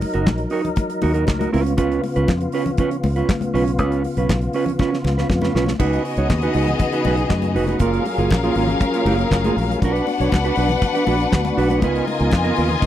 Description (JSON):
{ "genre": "disco", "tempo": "119 BPM", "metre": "4/4", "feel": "straight", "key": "unclear", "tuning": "A4 = 440 Hz", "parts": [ { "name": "mellow electric guitar", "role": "accompaniment", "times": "0.0-12.9 s", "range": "A#3 to C#5", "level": "-22 LUFS", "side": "right 5 dB", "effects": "none" }, { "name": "tonewheel organ", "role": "sustained chords", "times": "0.0-12.9 s", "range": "C#3 to A#4", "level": "-25 LUFS", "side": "left 1 dB", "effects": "overdrive, chorus vibrato, slow rotary speaker" }, { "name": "fingered electric bass", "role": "bass", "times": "0.0-12.8 s", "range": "E#1 to F#2", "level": "-22 LUFS", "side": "equal", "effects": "none" }, { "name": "damped 70s drum kit", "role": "drums", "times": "0.0-12.9 s", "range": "crash cymbal, handclaps, hi-hat, kick drum, snare drum", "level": "-20 LUFS", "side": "equal", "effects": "none" }, { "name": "congas", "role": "percussion", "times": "0.0-12.9 s", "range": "none", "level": "-28 LUFS", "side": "left 5 dB", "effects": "none" }, { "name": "clear studio string section", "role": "second line", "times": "5.8-12.9 s", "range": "B3 to G#5", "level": "-23 LUFS", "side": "left 5 dB", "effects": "none" } ], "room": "studio reverb", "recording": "dry, close 1970s-style studio recording", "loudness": "-17 LUFS", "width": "side -12 dB against mid", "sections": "0.0-5.8 A section; 5.8-12.9 B section", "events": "drum fill 4.8-5.8", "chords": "0.0 F#6; 1.5 C#7; 5.8 C#9sus4; 7.8 F#maj9; 9.8 Bm; 11.8 C#13", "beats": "0.27 0.77 1.28 | 1.78 2.28 2.78 3.29 | 3.79 4.29 4.79 5.29 | 5.80 6.30 6.80 7.30 | 7.81 8.31 8.81 9.31 | 9.81 10.32 10.82 11.32 | 11.82 12.32 12.82" }